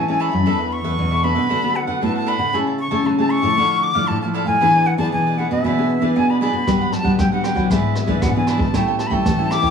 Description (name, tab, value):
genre	samba and choro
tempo	116 BPM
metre	4/4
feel	straight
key	unclear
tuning	A4 = 440 Hz
part	jazz flute	melody	0.0-9.7 s	E5 to D6	-21 LUFS	left 2 dB	none
part	cavaquinho	accompaniment	0.0-9.7 s	D4 to A5	-25 LUFS	right 5 dB	none
part	nylon-string guitar	accompaniment	0.0-9.7 s	G2 to A4	-22 LUFS	left 2 dB	none
part	nylon-string guitar	bass	0.0-9.7 s	E2 to A3	-21 LUFS	equal	none
part	jazz brush drum kit	drums	6.7-9.7 s	hi-hat, kick drum, rim click	-23 LUFS	right 1 dB	none
room	moderate large studio reverb, RT60 1.2 s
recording	small room ambience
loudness	-16 LUFS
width	side -6 dB against mid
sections	0.0-9.7 A section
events	none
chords	0.5 E7sus4; 1.5 D6; 2.5 Amaj7/C#; 3.6 Dmadd9; 4.6 E7; 6.7 Gmaj7; 7.7 E7/G#; 8.7 A7